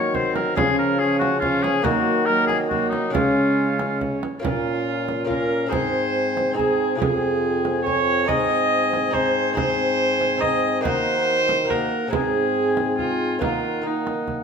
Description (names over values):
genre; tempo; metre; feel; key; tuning
classical, renaissance-style consort dance; 140 BPM; 3/4; straight; Eb dorian; A4 = 440 Hz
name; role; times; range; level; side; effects
warm oboe; melody; 0.0-14.4 s; Eb4 to Ab5; -26 LUFS; left 4 dB; none
warm viola; second line; 0.0-14.3 s; Bb3 to Eb5; -23 LUFS; right 3 dB; none
clear trombone; accompaniment; 0.0-14.4 s; F3 to Db4; -28 LUFS; left 4 dB; none
lute; accompaniment; 0.0-14.4 s; F2 to Ab4; -29 LUFS; left 2 dB; none
mellow bassoon; bass; 0.0-14.4 s; F2 to Eb3; -27 LUFS; right 1 dB; none
frame drum; percussion; 0.1-14.4 s; none; -30 LUFS; right 5 dB; none
room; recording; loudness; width
wet stone room reverb, RT60 1.2 s; none; -19 LUFS; side -6 dB against mid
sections
0.0-4.4 A section; 4.4-14.4 B section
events
none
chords
0.0 Ebm; 0.6 Db; 1.8 Ebm; 3.1 Db; 4.4 Bbm; 5.7 Ab; 7.0 Fm; 8.3 Ab; 10.8 Ebm; 12.1 Ab; 13.4 Ebm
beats
0.14 | 0.57 1.00 1.42 | 1.85 2.27 2.70 | 3.13 3.57 4.00 | 4.43 4.86 5.29 | 5.72 6.15 6.58 | 7.00 7.43 7.86 | 8.29 8.71 9.14 | 9.57 9.99 10.42 | 10.84 11.27 11.69 | 12.12 12.55 12.98 | 13.41 13.84 14.28